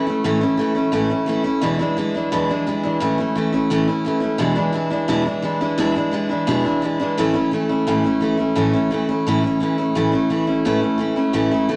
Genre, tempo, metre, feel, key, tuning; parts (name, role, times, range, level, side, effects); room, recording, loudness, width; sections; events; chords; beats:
rock; 173 BPM; 4/4; straight; A major; A4 = 435 Hz
picked steel-string acoustic guitar; solo; 0.0-11.8 s; E2 to E4; -20 LUFS; equal
moderate large studio reverb, RT60 1.2 s; -20 LUFS; mono
0.0-8.6 A section; 8.6-11.8 B section
0.0 A; 1.6 E7; 3.0 A; 4.4 E7; 7.2 A
| 0.24 0.59 0.94 1.28 | 1.63 1.97 2.32 2.67 | 3.01 3.36 3.70 4.05 | 4.39 4.74 5.09 5.43 | 5.78 6.12 6.47 6.82 | 7.17 7.51 7.86 8.21 | 8.55 8.90 9.25 9.60 | 9.95 10.30 10.64 10.99 | 11.34 11.69